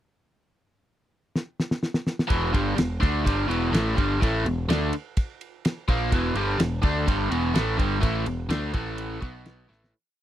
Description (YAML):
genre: classic rock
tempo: 126 BPM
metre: 4/4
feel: straight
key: unclear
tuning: A4 = 443 Hz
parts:
  - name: damped 70s drum kit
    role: drums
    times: 1.4-9.9 s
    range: kick drum, ride cymbal, snare drum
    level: -25 LUFS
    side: equal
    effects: none
  - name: overdriven electric guitar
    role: riff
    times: 2.3-9.9 s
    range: E2 to D4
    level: -25 LUFS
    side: equal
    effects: none
  - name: growling picked electric bass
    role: bass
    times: 2.3-9.9 s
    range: E1 to D2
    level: -28 LUFS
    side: equal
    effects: overdrive
room: little or no reverb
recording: dry, close 1970s-style studio recording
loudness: -23 LUFS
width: side -12 dB against mid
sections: 0.4-2.3 pickup bar; 2.3-9.9 riff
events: drum fill 1.3-2.3, 9.7; fade-out 8.0-9.9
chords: 0.4 N.C.; 2.3 E5; 8.7 A5; 9.2 B5; 9.7 A5